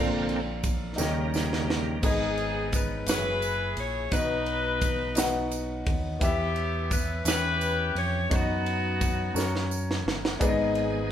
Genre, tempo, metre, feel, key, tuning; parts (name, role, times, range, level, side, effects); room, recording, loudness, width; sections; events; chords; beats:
slow gospel; 57 BPM (dotted quarters); 6/8; straight; B major; A4 = 440 Hz
warm concert grand piano; accompaniment; 0.0-11.1 s; G#2 to F#5; -30 LUFS; left 2 dB
bright tonewheel organ; sustained chords; 0.0-2.0, 10.4-11.1 s; Db3 to G#4; -31 LUFS; right 1 dB; slow rotary speaker, overdrive, chorus vibrato
fingered electric bass; bass; 0.0-11.1 s; F#1 to F#2; -32 LUFS; right 1 dB
crisp fusion drum kit; drums; 0.3-10.9 s; crash cymbal, kick drum, ride cymbal, snare drum; -30 LUFS; right 1 dB
tambourine; percussion; 0.6-10.7 s; -37 LUFS; right 6 dB
clear saxophone section; melody; 2.0-9.7 s; B3 to C#5; -29 LUFS; left 2 dB
moderate large studio reverb, RT60 0.9 s; band playing live in one room; -25 LUFS; side -10 dB against mid
0.0-2.0 A section; 2.0-11.1 B section
tonewheel organ solo 0.0-2.0; drum fill 1.0-2.0, 9.4-10.4
0.0 Bbmaj7; 1.0 Eb7; 2.0 G#m; 3.1 F#9sus4; 4.1 B; 6.2 Em; 7.3 Em6; 8.3 B/F#; 9.4 F#; 10.4 G#m
0.98 | 2.03 3.08 | 4.12 5.17 | 6.22 7.26 | 8.31 9.36 | 10.40